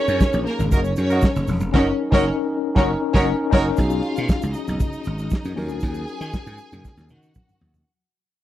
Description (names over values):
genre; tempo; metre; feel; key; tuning
disco; 118 BPM; 4/4; straight; unclear; A4 = 441 Hz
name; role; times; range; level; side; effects
clear studio string section; second line; 0.0-7.9 s; A#3 to G#5; -26 LUFS; right 1 dB; none
mellow tine electric piano; accompaniment; 0.0-7.9 s; C#4 to A#4; -25 LUFS; left 4 dB; medium stereo tremolo
slap bass; bass; 0.1-7.8 s; E1 to D#3; -24 LUFS; equal; none
warm soul drum kit; drums; 0.1-7.9 s; crash cymbal, hi-hat, kick drum, snare drum, toms; -19 LUFS; equal; none
egg shaker; percussion; 0.1-7.9 s; none; -47 LUFS; right 9 dB; none
congas; percussion; 0.2-7.7 s; none; -33 LUFS; left 2 dB; none
warm horn section; stabs; 0.7-3.7 s; D#4 to A#4; -27 LUFS; right 3 dB; none
room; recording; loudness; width
small room ambience; dry, close 1970s-style studio recording; -18 LUFS; side -13 dB against mid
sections
0.0-3.8 A section; 3.8-7.9 B section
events
band accent 1.7-3.8; fade-out 3.8-7.9; drum fill 6.8-7.9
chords
0.0 F#6; 3.8 B69; 5.6 D#m7